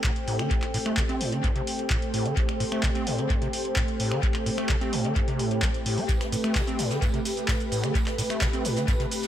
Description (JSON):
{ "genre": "acid house", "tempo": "129 BPM", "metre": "4/4", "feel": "straight", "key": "unclear", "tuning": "A4 = 440 Hz", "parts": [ { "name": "warm analog pad", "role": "sustained chords", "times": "0.0-9.3 s", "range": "A3 to C5", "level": "-31 LUFS", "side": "right 1 dB", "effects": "chorus, sidechain pumping" }, { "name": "overdriven acid bass", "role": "riff", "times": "0.0-9.1 s", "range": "G2 to C4", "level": "-30 LUFS", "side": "equal", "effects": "lush chorus, sidechain pumping, analog delay" }, { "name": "booming analog drum machine", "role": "drums", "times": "0.0-9.3 s", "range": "finger snaps, handclaps, hi-hat, shaker", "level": "-32 LUFS", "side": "equal", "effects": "small room ambience, dub echo" }, { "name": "electronic kick drum", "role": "drums", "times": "0.0-9.0 s", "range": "none", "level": "-27 LUFS", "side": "equal", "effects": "small room ambience" }, { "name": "warbly tape-like pad", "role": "texture", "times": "0.0-9.3 s", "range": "C4 to G5", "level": "-35 LUFS", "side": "equal", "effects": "chorus, built-in reverb, sidechain pumping" }, { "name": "tambourine and snare drum", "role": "drums", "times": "6.1-9.3 s", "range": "none", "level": "-40 LUFS", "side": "left 1 dB", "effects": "high-pass filter on snare, small room ambience, high-pass filter on perc, high-pass filter on room, dub echo" } ], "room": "light reverb, digital ambience", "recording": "echo-heavy mix", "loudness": "-24 LUFS", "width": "side -11 dB against mid", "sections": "0.0-9.3 A section", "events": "none", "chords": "0.0 Am7" }